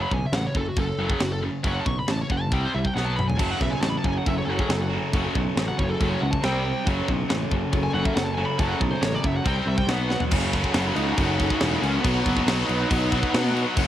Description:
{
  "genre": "heavy metal",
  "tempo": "139 BPM",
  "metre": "4/4",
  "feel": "straight",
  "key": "F# minor, F# dorian from 10.3 s",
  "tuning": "A4 = 440 Hz",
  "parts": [
    { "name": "high-gain lead guitar", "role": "melody", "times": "0.0-13.5 s", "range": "B3 to C#6", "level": "-30 LUFS", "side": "equal", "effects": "distortion, cassette tape" },
    { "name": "tight distorted guitar", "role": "riff", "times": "0.0-13.9 s", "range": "F#2 to C4", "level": "-28 LUFS", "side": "equal", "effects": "distortion, cassette tape" },
    { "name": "picked electric bass", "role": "bass", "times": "0.0-13.9 s", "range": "E1 to B2", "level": "-27 LUFS", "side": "equal", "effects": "none" },
    { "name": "tight metal drum kit", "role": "drums", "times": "0.1-13.9 s", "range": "crash cymbal, kick drum, snare drum, toms", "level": "-27 LUFS", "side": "equal", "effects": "cassette tape" },
    { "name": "dark chamber string section", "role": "sustained chords", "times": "3.4-13.9 s", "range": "F#3 to F#5", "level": "-33 LUFS", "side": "left 2 dB", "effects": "cassette tape" },
    { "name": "distorted electric guitar", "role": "riff", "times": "3.4-13.9 s", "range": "F#2 to C4", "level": "-29 LUFS", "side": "right 1 dB", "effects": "overdrive, cassette tape" }
  ],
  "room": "little or no reverb",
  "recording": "home recording on cassette",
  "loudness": "-21 LUFS",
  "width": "side -12 dB against mid",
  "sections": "0.0-10.3 A section; 10.3-13.9 B section",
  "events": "lead electric guitar solo 0.0-10.3; drum fill 3.0-3.4, 10.1",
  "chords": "0.0 F#m; 2.5 C5; 3.0 B5; 3.4 F#m; 6.4 C5; 6.9 F#m; 9.5 C5; 9.9 B5; 10.3 F#m; 12.0 B"
}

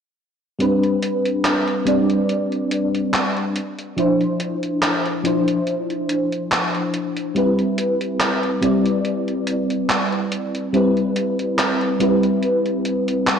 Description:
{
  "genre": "vaporwave",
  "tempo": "71 BPM",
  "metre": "4/4",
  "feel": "swing 54% on 16ths",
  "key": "C major",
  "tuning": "A4 = 441 Hz",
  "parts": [
    { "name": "mellow FM electric piano", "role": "accompaniment", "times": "0.6-13.4 s", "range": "F3 to D5", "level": "-18 LUFS", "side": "equal", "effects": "ensemble chorus, tape echo" },
    { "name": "gated 80s digital drum machine", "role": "drums", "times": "0.6-13.4 s", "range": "handclaps, hi-hat", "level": "-22 LUFS", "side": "right 1 dB", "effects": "gated reverb" }
  ],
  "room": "moderate lush hall reverb, RT60 2.5 s",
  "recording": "cassette tape",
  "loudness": "-18 LUFS",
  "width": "side -7 dB against mid",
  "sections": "0.6-13.4 A section",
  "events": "none",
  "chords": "0.6 Gadd11; 3.6 Dm9; 7.4 Cmaj7"
}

